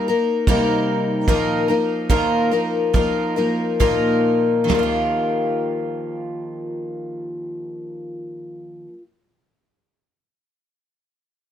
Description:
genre	acoustic pop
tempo	66-76 BPM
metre	4/4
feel	straight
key	Eb major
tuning	A4 = 440 Hz
part	picked twelve-string acoustic guitar	accompaniment	0.0-9.1 s	Bb2 to Bb4	-19 LUFS	left 1 dB	none
part	loose indie drum kit	drums	0.5-4.9 s	crash cymbal, kick drum, snare drum, toms	-21 LUFS	right 2 dB	none
room	light reverb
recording	none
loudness	-18 LUFS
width	side -10 dB against mid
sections	0.0-4.7 A section; 4.7-8.3 B section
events	slowing down 0.0-4.7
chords	0.0 Cm7; 1.3 Bbsus4; 4.7 Ebadd9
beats	0.47 | 1.28 2.10 2.94 3.80 | 4.70 5.60 6.51 7.42

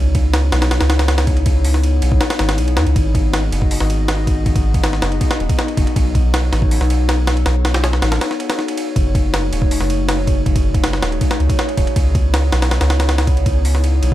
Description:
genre	drum and bass, jungle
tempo	160 BPM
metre	4/4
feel	straight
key	unclear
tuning	A4 = 440 Hz
part	warbly tape-like pad	sustained chords	0.0-14.1 s	A3 to D#5	-23 LUFS	left 2 dB	chorus, built-in reverb
part	soft dub sub bass	bass	0.0-14.1 s	D#1 to E2	-16 LUFS	equal	none
part	jungle sampler-style drum kit	drums	0.1-14.1 s	hi-hat, kick drum, ride cymbal, snare drum	-18 LUFS	equal	small room reverb
room	little or no reverb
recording	none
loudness	-14 LUFS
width	side -14 dB against mid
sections	0.0-14.1 A section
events	break 8.2-9.0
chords	0.0 C#m9; 3.0 G#m7; 6.0 B9; 9.0 F#m69; 12.0 C#m9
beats	0.34 0.71 1.09 | 1.46 1.84 2.21 2.59 | 2.96 3.34 3.71 4.09 | 4.46 4.84 5.21 5.59 | 5.96 6.34 6.71 7.09 | 7.46 7.84 8.21 8.59 | 8.96 9.34 9.71 10.09 | 10.46 10.84 11.21 11.59 | 11.96 12.34 12.71 13.09 | 13.46 13.84

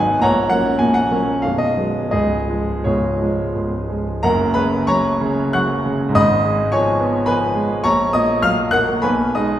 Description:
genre	classical, romantic character piece for solo piano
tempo	81-111 BPM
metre	3/4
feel	rubato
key	F# major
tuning	A4 = 440 Hz
part	clear grand piano	solo	0.0-9.6 s	B0 to F#6	-15 LUFS	equal	none
room	wet recital hall reverb, RT60 1.6 s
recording	heard from further back in the room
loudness	-15 LUFS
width	side -11 dB against mid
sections	0.0-4.2 A section; 4.2-9.6 B section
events	none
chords	0.2 F#/A#; 1.4 G#m7/B; 2.1 C#; 4.2 F#; 6.2 C#7/G#; 7.8 F#/A#; 9.0 B6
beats	| 0.24 0.80 1.43 | 2.13 2.86 3.55 | 4.23 4.87 5.55 | 6.16 6.73 7.28 | 7.85 8.43 9.02

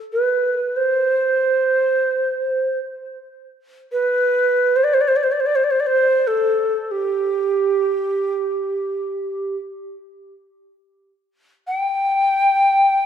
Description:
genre	world meditative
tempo	free time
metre	none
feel	none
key	unclear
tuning	A4 = 439 Hz
part	mellow hollow Native American-style cedar flute	solo	0.1-13.1 s	G4 to G5	-17 LUFS	right 1 dB	analog delay
room	wet echo chamber reverb, RT60 1.5 s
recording	echo-heavy mix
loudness	-17 LUFS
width	side -8 dB against mid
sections	0.0-13.1 A section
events	none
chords	none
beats	free time

